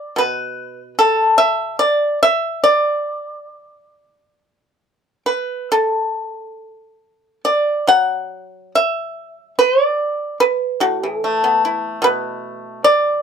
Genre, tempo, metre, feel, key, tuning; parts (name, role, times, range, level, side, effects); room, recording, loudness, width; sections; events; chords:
chinese traditional, Chinese solo plucked strings; 63-76 BPM; 4/4; rubato; D gong mode; A4 = 441 Hz
pipa; solo; 0.0-13.2 s; A2 to F#5; -15 LUFS; equal
little or no reverb; close, detailed microphones; -15 LUFS; side -7 dB against mid
0.0-6.2 A section; 6.2-13.2 B section